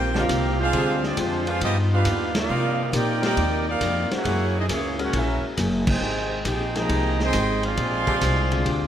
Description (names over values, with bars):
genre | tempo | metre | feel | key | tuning
jazz, big band swing | 136 BPM | 4/4 | swing 68% on 8ths | unclear | A4 = 440 Hz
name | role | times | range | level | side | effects
clear trumpet section | melody | 0.0-8.9 s | Ab3 to C6 | -26 LUFS | right 1 dB | none
mellow trombone section | second line | 0.0-8.9 s | C3 to G4 | -28 LUFS | right 3 dB | none
archtop guitar, miked and amplified | accompaniment | 0.0-8.9 s | G2 to Ab4 | -33 LUFS | left 5 dB | none
upright bass | bass | 0.0-8.9 s | Gb1 to C3 | -25 LUFS | equal | none
bright saxophone section | sustained chords | 0.1-4.9, 8.1-8.2 s | D3 to D5 | -34 LUFS | equal | none
vintage drum kit | drums | 0.1-8.8 s | crash cymbal, hi-hat, kick drum, ride cymbal, snare drum | -29 LUFS | equal | none
warm grand piano | accompaniment | 0.2-8.9 s | D3 to C5 | -31 LUFS | left 4 dB | none
room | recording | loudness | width
moderate concert hall reverb, RT60 2.3 s | none | -20 LUFS | side -10 dB against mid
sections
0.0-8.9 A section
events
band accent 2.3, 5.8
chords
0.0 Eb69; 0.7 Dm7b5; 1.6 G7b13; 2.5 Cm11; 4.3 Gb9; 6.0 Fm9; 7.8 Bb13